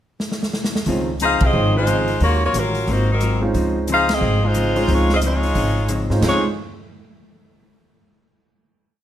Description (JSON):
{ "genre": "jazz, big band swing", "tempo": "179 BPM", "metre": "4/4", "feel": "swing 63% on 8ths", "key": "Db major", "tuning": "A4 = 440 Hz", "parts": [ { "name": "swinging big-band drum kit", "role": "drums", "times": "0.2-6.3 s", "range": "crash cymbal, hi-hat, kick drum, ride cymbal, rim click, snare drum", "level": "-25 LUFS", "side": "equal", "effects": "none" }, { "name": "hollow-body jazz guitar", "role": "accompaniment", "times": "0.9-6.4 s", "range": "Ab2 to Gb4", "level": "-27 LUFS", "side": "left 3 dB", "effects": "none" }, { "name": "warm concert grand piano", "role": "accompaniment", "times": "0.9-6.4 s", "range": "Eb3 to F4", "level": "-23 LUFS", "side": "right 3 dB", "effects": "none" }, { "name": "upright bass", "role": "bass", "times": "0.9-6.4 s", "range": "Ab1 to Ab2", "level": "-20 LUFS", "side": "equal", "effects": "none" }, { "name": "warm saxophone section", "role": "melody", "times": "1.2-6.4 s", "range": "Gb3 to F5", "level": "-19 LUFS", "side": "left 1 dB", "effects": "none" } ], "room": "moderate large studio reverb, RT60 0.8 s", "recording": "none", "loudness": "-16 LUFS", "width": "side -11 dB against mid", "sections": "0.0-0.9 pickup bar; 0.9-6.2 A section; 6.2-7.6 final chord", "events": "drum fill 0.2-0.9; band accent 1.4, 4.1", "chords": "0.0 N.C.; 0.9 Dbmaj9; 2.2 Ebm11; 2.9 Ab13; 3.5 Dbmaj9" }